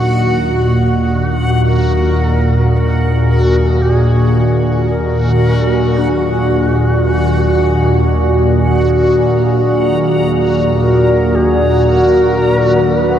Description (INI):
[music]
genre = dark ambient drone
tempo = 56 BPM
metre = 4/4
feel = straight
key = unclear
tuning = A4 = 440 Hz
[part]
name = deep dark ambient pad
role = sustained chords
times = 0.0-13.2 s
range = Gb4 to Ab5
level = -16 LUFS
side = equal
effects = chorus, built-in reverb
[part]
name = dark detuned synth bell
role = arpeggios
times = 0.0-13.2 s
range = D4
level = -31 LUFS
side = left 5 dB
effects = none
[part]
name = organ-like drone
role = drone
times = 0.0-13.2 s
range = Eb2 to Bb2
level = -13 LUFS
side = equal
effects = ensemble chorus, built-in reverb
[part]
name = backwards swelling texture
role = texture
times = 0.0-13.2 s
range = Gb4 to Bb5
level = -20 LUFS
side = equal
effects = built-in reverb
[part]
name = breathy shakuhachi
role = melody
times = 0.6-13.2 s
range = Gb4 to Cb5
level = -23 LUFS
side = left 1 dB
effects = tape echo
[sound]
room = wet cathedral reverb, RT60 5.1 s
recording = dark, warm production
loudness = -10 LUFS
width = side -10 dB against mid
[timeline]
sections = 0.0-13.2 A section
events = fade-in on shakuhachi 0.0-13.2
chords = 0.0 Ebm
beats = | 0.63 1.70 2.77 3.84 | 4.91 5.98 7.05 8.13 | 9.20 10.27 11.34 12.41